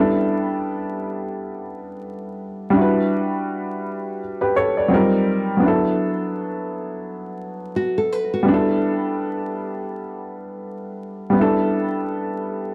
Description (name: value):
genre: lo-fi hip hop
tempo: 84 BPM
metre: 4/4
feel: swing 60% on 16ths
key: unclear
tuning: A4 = 440 Hz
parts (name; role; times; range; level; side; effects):
- warm upright piano; accompaniment; 0.0-12.7 s; F#3 to D5; -22 LUFS; equal; cassette tape, plate reverb
- nylon-string guitar; second line; 7.8-8.7 s; F#4 to B4; -25 LUFS; equal; analog delay
room: moderate studio reverb, RT60 0.5 s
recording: dark, warm production, vinyl crackle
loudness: -21 LUFS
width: mono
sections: 0.0-12.7 A section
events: none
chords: 0.0 G69; 2.8 Em9; 4.9 D#69; 5.6 D69; 8.5 G69